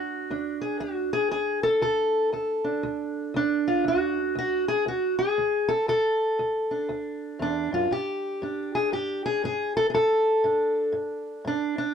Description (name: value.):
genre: acoustic country blues, solo or duo.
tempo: 118 BPM.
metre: 4/4.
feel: swing 62% on 8ths.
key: unclear.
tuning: A4 = 440 Hz.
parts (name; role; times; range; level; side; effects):
fingerpicked steel-string acoustic guitar; solo; 0.0-11.9 s; D2 to A4; -24 LUFS; equal; none.
room: light reverb.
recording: dark, warm production.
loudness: -23 LUFS.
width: side -7 dB against mid.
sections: 0.0-11.9 A section.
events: none.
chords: 0.0 D; 7.9 G5.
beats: 0.30 0.81 1.31 | 1.82 2.33 2.83 3.34 | 3.85 4.35 4.86 5.37 | 5.87 6.38 6.89 7.39 | 7.90 8.41 8.92 9.43 | 9.93 10.44 10.95 11.46.